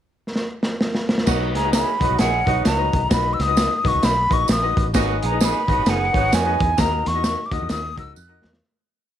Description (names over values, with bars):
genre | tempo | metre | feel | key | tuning
uptempo 1960s-style soul | 131 BPM | 4/4 | swing 61% on 8ths | unclear | A4 = 439 Hz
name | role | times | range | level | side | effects
crunchy breakbeat drum kit | drums | 0.4-8.6 s | crash cymbal, hi-hat, kick drum, snare drum | -22 LUFS | equal | none
mellow horn section | second line | 1.3-6.6 s | F#3 to G#4 | -26 LUFS | right 14 dB | none
clear grand piano | accompaniment | 1.3-8.5 s | D#4 to D#5 | -28 LUFS | left 13 dB | none
fingered electric bass | bass | 1.3-8.6 s | F#1 to E#2 | -25 LUFS | equal | none
tambourine | percussion | 1.3-8.3 s | none | -33 LUFS | right 18 dB | none
breathy concert flute | melody | 1.6-8.5 s | F#5 to F#6 | -22 LUFS | equal | none
room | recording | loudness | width
light reverb, small room ambience | 1960s-style stereo with parts hard left and right | -17 LUFS | side -10 dB against mid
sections
0.0-1.3 pickup bar; 1.3-8.6 pre-chorus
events
drum fill 0.4-1.3, 8.2-8.6; fade-out 6.8-8.6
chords
0.0 N.C.; 1.3 B; 4.9 G#m; 6.8 D#m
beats
0.35 0.81 | 1.27 1.73 2.19 2.65 | 3.11 3.57 4.03 4.49 | 4.95 5.41 5.86 6.32 | 6.78 7.24 7.70 8.16